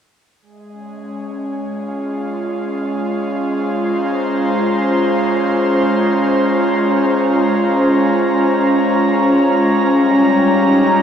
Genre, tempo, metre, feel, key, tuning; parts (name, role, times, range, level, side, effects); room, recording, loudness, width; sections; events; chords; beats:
ambient; free time; Bb minor; A4 = 440 Hz
airy breathy pad; sustained chords; 0.4-11.0 s; G3 to Bb5; -14 LUFS; equal; chorus
wet lush hall reverb, RT60 2.7 s; cassette tape; -13 LUFS; side -8 dB against mid
0.4-11.0 A section
fade-in on analog synth pad 0.4-11.0
0.4 Bbm9; 10.0 Eb7
free time